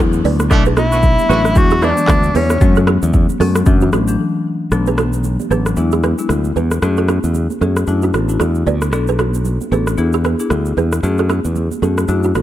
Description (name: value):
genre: afrobeats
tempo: 114 BPM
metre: 4/4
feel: swing 58% on 16ths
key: B dorian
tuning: A4 = 438 Hz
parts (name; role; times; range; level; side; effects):
- marimba with medium mallets; accompaniment; 0.0-12.3 s; E3 to A4; -20 LUFS; left 5 dB; none
- balafon; riff; 0.0-12.4 s; D4 to D5; -22 LUFS; right 7 dB; ping-pong delay
- modern bright fingered electric bass; bass; 0.0-12.4 s; A1 to F#2; -16 LUFS; equal; none
- afro-pop drum kit; drums; 0.1-12.4 s; handclaps, hi-hat, kick drum, rim click, shaker; -18 LUFS; equal; none
- congas; percussion; 0.3-12.4 s; none; -26 LUFS; right 9 dB; none
- warm horn section; second line; 0.5-1.9 s; B2 to F#4; -22 LUFS; right 2 dB; none
- breathy tenor saxophone; melody; 0.8-2.8 s; C#4 to F#4; -17 LUFS; left 1 dB; ping-pong delay
room: small room reverb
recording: none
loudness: -13 LUFS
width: side -13 dB against mid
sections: 0.0-4.7 A section; 4.7-12.4 B section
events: break 4.2-4.7, 4.7-12.4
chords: 0.0 Dsus2; 0.5 Bm7; 1.6 E7; 2.6 F#madd9; 3.7 Dadd9; 4.7 Bm7; 5.8 E7; 6.8 F#madd9; 7.9 Dadd9; 8.9 Bm7; 10.0 E7; 11.0 F#madd9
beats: | 0.51 1.03 1.56 2.09 | 2.61 3.14 3.67 4.19 | 4.72 5.24 5.77 6.30 | 6.82 7.35 7.88 8.40 | 8.93 9.46 9.98 10.51 | 11.03 11.56 12.09